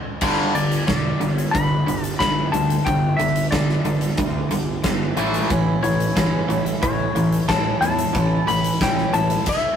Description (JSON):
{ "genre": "classic rock", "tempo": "91 BPM", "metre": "4/4", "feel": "straight", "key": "unclear", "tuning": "A4 = 440 Hz", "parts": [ { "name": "overdriven electric guitar", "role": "riff", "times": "0.2-9.4 s", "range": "G2 to A3", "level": "-24 LUFS", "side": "right 4 dB", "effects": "none" }, { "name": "overdriven semi-hollow guitar", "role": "riff", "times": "0.2-9.4 s", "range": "G2 to A3", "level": "-25 LUFS", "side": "left 4 dB", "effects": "none" }, { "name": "fuzz picked electric bass", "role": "bass", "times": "0.2-9.4 s", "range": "E1 to E2", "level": "-27 LUFS", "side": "equal", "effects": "overdrive" }, { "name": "huge arena drum kit", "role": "drums", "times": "0.2-9.6 s", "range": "crash cymbal, hi-hat, kick drum, snare drum", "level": "-24 LUFS", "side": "equal", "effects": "none" }, { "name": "clean lap steel guitar", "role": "melody", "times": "0.6-9.8 s", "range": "C#5 to B5", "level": "-24 LUFS", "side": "left 4 dB", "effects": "none" }, { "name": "picked twelve-string acoustic guitar", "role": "accompaniment", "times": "5.5-9.5 s", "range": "A2 to E4", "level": "-27 LUFS", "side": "right 2 dB", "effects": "none" } ], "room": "moderate studio reverb, RT60 0.5 s", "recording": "rough rehearsal-room recording", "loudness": "-18 LUFS", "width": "side -8 dB against mid", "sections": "0.2-9.8 A section", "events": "stop 0.0", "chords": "0.2 G5; 5.2 A" }